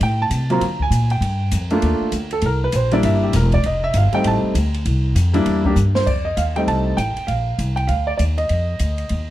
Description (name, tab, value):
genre	jazz piano trio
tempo	198 BPM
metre	4/4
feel	swing 62% on 8ths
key	F mixolydian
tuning	A4 = 439 Hz
part	warm grand piano	melody	0.0-9.3 s	Gb3 to Bb5	-20 LUFS	right 1 dB	none
part	upright bass	bass	0.0-9.3 s	E1 to D3	-19 LUFS	equal	none
part	open jazz drum kit	drums	0.0-9.2 s	crash cymbal, hi-hat, kick drum, ride cymbal, snare drum	-29 LUFS	left 2 dB	none
room	light reverb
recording	dark, warm production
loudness	-16 LUFS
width	side -14 dB against mid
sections	0.0-6.1 A section; 6.1-9.3 B section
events	grand piano solo 0.0-6.1; drum fill 5.8-6.1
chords	0.0 Gmadd9/A; 0.6 Bb7; 1.2 Gm7; 2.4 C7; 3.6 F7; 4.9 C7; 6.1 F7; 7.3 Bb; 8.5 F7(no3)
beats	| 0.01 0.31 0.62 0.92 | 1.22 1.52 1.83 2.13 | 2.43 2.73 3.04 3.34 | 3.64 3.95 4.25 4.55 | 4.85 5.16 5.46 5.76 | 6.07 6.37 6.67 6.98 | 7.28 7.58 7.89 8.19 | 8.50 8.80 9.10